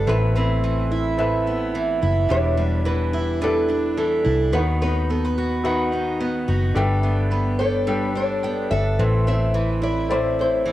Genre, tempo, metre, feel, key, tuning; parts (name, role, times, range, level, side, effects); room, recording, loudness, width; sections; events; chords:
acoustic pop; 108 BPM; 4/4; straight; A4 = 440 Hz
nylon-string guitar; melody; 0.0-10.7 s; A4 to E5; -25 LUFS; left 1 dB; cassette tape, analog delay
fingerpicked steel-string acoustic guitar; accompaniment; 0.0-10.7 s; E2 to A4; -25 LUFS; right 2 dB; cassette tape
warm grand piano; accompaniment; 0.0-10.7 s; C4 to B5; -27 LUFS; left 3 dB; cassette tape
mandolin; arpeggios; 0.0-10.7 s; G3 to G5; -29 LUFS; right 4 dB; cassette tape
vintage muted fingered electric bass; bass; 0.0-10.7 s; E1 to D#2; -23 LUFS; equal
moderate spring reverb, RT60 1.3 s, small room ambience; home recording on cassette; -19 LUFS; side -14 dB against mid
0.0-10.7 A section
0.1 Amadd9; 2.3 Em7; 4.5 B/D#; 6.8 Gadd9; 9.0 Amadd9